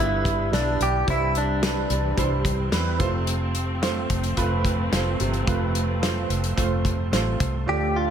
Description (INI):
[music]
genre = piano-driven pop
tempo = 109 BPM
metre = 4/4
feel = straight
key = unclear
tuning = A4 = 441 Hz
[part]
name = direct-recorded clean electric guitar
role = melody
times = 0.0-2.4, 7.7-8.1 s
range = D4 to G4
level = -25 LUFS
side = equal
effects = analog chorus, tape echo
[part]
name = clear grand piano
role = accompaniment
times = 0.0-8.1 s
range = G2 to D5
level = -27 LUFS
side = right 5 dB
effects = ensemble chorus
[part]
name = warm studio string section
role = sustained chords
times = 0.0-8.1 s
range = D3 to D4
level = -32 LUFS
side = left 2 dB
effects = none
[part]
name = vintage muted fingered electric bass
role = bass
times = 0.0-8.1 s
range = F1 to E2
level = -26 LUFS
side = equal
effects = none
[part]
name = natural country drum kit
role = drums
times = 0.3-7.5 s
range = hi-hat, kick drum, snare drum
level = -27 LUFS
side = left 1 dB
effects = none
[sound]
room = moderate plate reverb, RT60 2.0 s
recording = dreamy mix soaked in reverb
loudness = -21 LUFS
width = side -8 dB against mid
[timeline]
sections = 0.0-7.7 A section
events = none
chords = 0.0 G; 1.1 C; 3.0 F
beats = 0.53 | 1.08 1.63 2.18 2.73 | 3.28 3.83 4.38 4.93 | 5.48 6.03 6.58 7.12 | 7.67